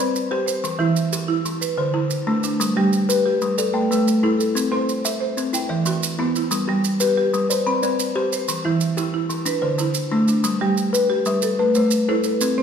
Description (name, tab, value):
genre	southern african traditional, mbira-style interlocking cycle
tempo	122 BPM (dotted quarters)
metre	12/8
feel	straight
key	G major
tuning	A4 = 439 Hz
part	buzzing kalimba	arpeggios	0.0-12.6 s	D3 to B5	-21 LUFS	left 4 dB	none
part	buzzing marimba with medium hard mallets	arpeggios	0.0-12.6 s	D3 to G5	-22 LUFS	right 5 dB	none
part	maracas	percussion	0.2-12.6 s	none	-28 LUFS	right 7 dB	none
room	wet recital hall reverb, RT60 1.5 s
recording	recorded in a church or concert hall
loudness	-18 LUFS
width	side -7 dB against mid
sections	0.0-10.4 A section; 10.4-12.6 A section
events	none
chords	0.0 C5; 0.6 Em; 1.6 D5; 2.6 G; 3.6 A5; 4.6 C; 5.5 Em; 6.5 G; 7.5 C5; 8.5 Em; 9.5 D5; 10.4 G; 11.4 Am